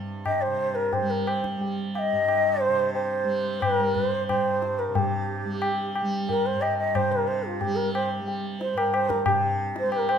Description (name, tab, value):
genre	indian classical, Hindustani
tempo	90 BPM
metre	5/4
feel	straight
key	unclear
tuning	A4 = 443 Hz
part	tanpura	drone	0.0-10.2 s	G2 to G3	-31 LUFS	right 2 dB	none
part	mellow bansuri	melody	0.3-10.2 s	F4 to F5	-25 LUFS	equal	none
part	tabla	percussion	0.3-10.2 s	none	-27 LUFS	left 2 dB	none
room	wet recital hall reverb, RT60 1.5 s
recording	minimal, uncompressed stereo recording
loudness	-23 LUFS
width	side -8 dB against mid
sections	0.0-10.2 A section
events	none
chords	none